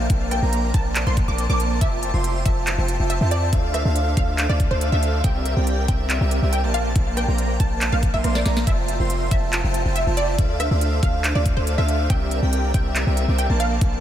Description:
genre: future bass.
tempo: 140 BPM.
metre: 4/4.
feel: half-time.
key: F major.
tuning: A4 = 439 Hz.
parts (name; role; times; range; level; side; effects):
wide unison pluck; melody; 0.0-13.9 s; C5 to D6; -28 LUFS; right 1 dB; analog chorus, sidechain pumping, ping-pong delay.
airy dreamy lead; arpeggios; 0.0-14.0 s; E5 to C6; -31 LUFS; equal; chorus, sidechain pumping.
dense compressed supersaw; riff; 0.0-14.0 s; Bb3 to C6; -27 LUFS; right 2 dB; sidechain pumping.
warm 808-style bass; bass; 0.0-14.0 s; F1 to F2; -22 LUFS; equal; tube saturation, sidechain pumping.
electronic kick drum; drums; 0.1-13.9 s; none; -21 LUFS; equal; overdrive.
trap drum kit; drums; 0.1-13.9 s; handclaps, hi-hat, rim click, snare drum; -29 LUFS; equal; overdrive.
room: light reverb.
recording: none.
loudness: -18 LUFS.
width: side -11 dB against mid.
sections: 0.0-14.0 A section.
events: drum fill 8.3-8.7.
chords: 0.0 Bbmaj7; 1.8 Fmaj7; 3.5 Dm7; 5.2 C7; 6.7 Bbmaj7; 8.7 Fmaj7; 10.4 Dm7; 12.1 C7.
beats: | 0.10 0.53 0.96 1.39 | 1.81 2.24 2.67 3.10 | 3.53 3.96 4.38 4.81 | 5.24 5.67 6.10 6.53 | 6.96 7.38 7.81 8.24 | 8.67 9.10 9.53 9.96 | 10.38 10.81 11.24 11.67 | 12.10 12.53 12.96 13.38 | 13.81.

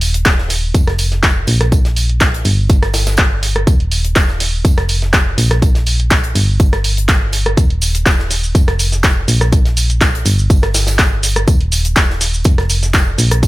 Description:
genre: piano house.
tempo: 123 BPM.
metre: 4/4.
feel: swing 53% on 16ths.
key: unclear.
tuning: A4 = 440 Hz.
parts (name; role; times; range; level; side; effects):
solid FM bass; bass; 0.0-13.5 s; Eb1 to Bb1; -16 LUFS; equal; sidechain pumping.
gated 80s drum kit; drums; 0.0-13.5 s; hi-hat, snare drum, tambourine; -26 LUFS; equal; sidechain pumping on hats, high-pass filter on hats, high-pass filter on snare, sidechain pumping on perc, high-pass filter on perc, high-pass filter on room.
punchy analog drum machine; drums; 0.0-13.5 s; handclaps, hi-hat, rim click, shaker; -17 LUFS; equal; none.
electronic kick drum; drums; 0.3-13.5 s; none; -12 LUFS; equal; none.
room: little or no reverb.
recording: none.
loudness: -11 LUFS.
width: side -18 dB against mid.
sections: 0.0-13.5 A section.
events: none.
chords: none.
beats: 0.26 0.74 1.23 | 1.72 2.21 2.70 3.18 | 3.67 4.16 4.65 5.13 | 5.62 6.11 6.60 7.09 | 7.57 8.06 8.55 9.04 | 9.53 10.01 10.50 10.99 | 11.48 11.96 12.45 12.94 | 13.43.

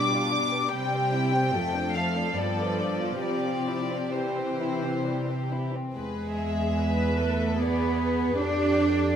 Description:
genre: classical, slow romantic movement for string orchestra.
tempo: 65-77 BPM.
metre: 3/4.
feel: rubato.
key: C major.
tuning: A4 = 440 Hz.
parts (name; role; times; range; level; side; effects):
warm studio violin section; melody; 0.0-9.2 s; A4 to D6; -31 LUFS; left 3 dB; none.
dark studio violin section; second line; 0.0-9.2 s; G3 to D5; -32 LUFS; left 1 dB; none.
warm studio viola section; accompaniment; 0.0-9.2 s; E3 to B4; -31 LUFS; equal; none.
warm studio cello section; bass; 0.0-9.2 s; F2 to D4; -29 LUFS; right 2 dB; none.
rich studio double bass section; bass; 5.9-9.2 s; E2 to F2; -30 LUFS; right 2 dB; none.
room: light reverb.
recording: close, detailed microphones.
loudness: -24 LUFS.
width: side -8 dB against mid.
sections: 0.0-5.9 A section; 5.9-9.2 B section.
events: none.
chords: 0.0 G7/B; 0.8 C; 1.6 Dm/F; 2.4 G9; 3.2 C; 5.9 E; 8.4 F.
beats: | 0.75 1.55 2.36 | 3.23 4.13 5.05 | 5.94 6.77 7.58 | 8.38.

